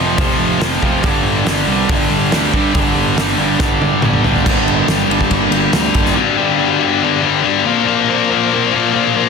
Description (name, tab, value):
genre	quiet-loud alternative rock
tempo	140 BPM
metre	4/4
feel	straight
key	unclear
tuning	A4 = 440 Hz
part	crunchy overdriven guitar	riff	0.0-6.2 s	F2 to G3	-18 LUFS	right 14 dB	none
part	scooped high-gain guitar	riff	0.0-9.3 s	F2 to Bb3	-15 LUFS	left 9 dB	distortion
part	fuzz picked electric bass	bass	0.0-6.1 s	F1 to G2	-20 LUFS	equal	overdrive
part	loose indie drum kit	drums	0.2-6.1 s	crash cymbal, hi-hat, kick drum, ride cymbal, snare drum, toms	-19 LUFS	equal	none
part	ensemble organ-string	sustained chords	4.4-9.3 s	D3 to D5	-23 LUFS	right 2 dB	ensemble chorus
room	light reverb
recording	dense, heavily limited modern master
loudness	-12 LUFS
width	side -5 dB against mid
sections	0.0-4.5 A section; 4.5-6.2 B section; 6.2-9.3 C section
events	drum fill 3.6-4.5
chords	0.0 F5; 1.0 G5; 4.5 Gm; 6.2 G; 7.7 Bbadd9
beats	0.18 0.61 | 1.03 1.46 1.89 2.32 | 2.75 3.17 3.60 4.03 | 4.46 4.89 5.31 5.74 | 6.17 6.59 7.02 7.45 | 7.87 8.30 8.72 9.15